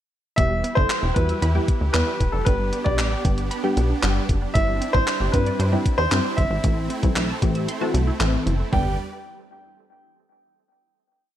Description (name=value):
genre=dance-pop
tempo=115 BPM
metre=4/4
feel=straight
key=G major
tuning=A4 = 436 Hz
part: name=clear baby grand piano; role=melody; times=0.4-9.0 s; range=A4 to G5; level=-25 LUFS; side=equal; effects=analog delay
part: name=funky polysynth comp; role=accompaniment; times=0.4-9.0 s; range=D3 to A4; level=-28 LUFS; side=left 1 dB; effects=chorus, sidechain pumping
part: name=supersaw chords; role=sustained chords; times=0.4-9.0 s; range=E3 to D5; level=-32 LUFS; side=right 2 dB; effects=sidechain pumping
part: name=wide unison pluck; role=arpeggios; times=0.4-9.0 s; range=D3 to E6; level=-33 LUFS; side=right 3 dB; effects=sidechain pumping, analog delay
part: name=plucky analog bass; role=bass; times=0.4-9.0 s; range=E1 to G2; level=-23 LUFS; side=equal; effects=sidechain pumping
part: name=gated 80s digital drum machine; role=drums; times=0.4-8.8 s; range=handclaps, hi-hat, kick drum, toms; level=-23 LUFS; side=equal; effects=gated reverb
room=little or no reverb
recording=none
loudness=-19 LUFS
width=side -12 dB against mid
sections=0.4-8.7 pre-chorus; 8.7-10.8 final chord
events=kick muted 7.7-8.7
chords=0.4 Em; 2.5 G; 4.6 Cadd9/G; 6.6 Am; 8.7 G